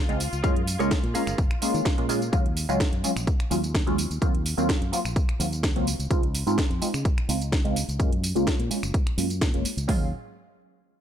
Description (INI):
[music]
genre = filtered disco house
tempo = 127 BPM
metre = 4/4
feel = straight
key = Eb dorian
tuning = A4 = 440 Hz
[part]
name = rich studio violin section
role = sustained chords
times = 0.0-2.3 s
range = F4 to F5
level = -39 LUFS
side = left 2 dB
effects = vintage 12-bit sampler grit, sidechain pumping, low-pass filter
[part]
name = fingered electric bass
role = bass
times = 0.0-10.1 s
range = Gb1 to Eb3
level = -29 LUFS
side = equal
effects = tube saturation, sidechain pumping, low-pass filter
[part]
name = funky polysynth comp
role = accompaniment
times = 0.1-10.1 s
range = Gb3 to F4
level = -28 LUFS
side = equal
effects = chorus, phaser, sidechain pumping, low-pass filter
[part]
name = direct-recorded clean electric guitar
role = riff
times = 0.1-2.0 s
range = Ab4 to F5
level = -34 LUFS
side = right 4 dB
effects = vintage 12-bit sampler grit, sidechain pumping, low-pass filter
[part]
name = house drum kit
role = drums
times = 0.1-9.9 s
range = finger snaps, hi-hat, snare drum, tambourine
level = -31 LUFS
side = right 1 dB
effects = sidechain pumping on hats, sidechain pumping on perc
[part]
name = house drum kit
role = drums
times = 0.4-10.0 s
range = hi-hat, kick drum, toms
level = -24 LUFS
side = equal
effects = none
[sound]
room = light reverb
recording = none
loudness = -22 LUFS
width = side -10 dB against mid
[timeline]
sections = 0.0-9.9 A section; 9.9-11.0 B section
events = filter sweep on fingered electric bass 0.0-9.9; filter sweep 0.0-9.9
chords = 0.4 Gbmaj9; 2.3 Ebm11; 4.2 Ebm69; 5.9 Dbmaj9; 8.0 Gbmaj9; 9.9 Ebm11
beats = | 0.44 0.91 1.38 1.85 | 2.33 2.80 3.27 3.75 | 4.22 4.69 5.16 5.63 | 6.11 6.58 7.05 7.52 | 8.00 8.47 8.94 9.41 | 9.89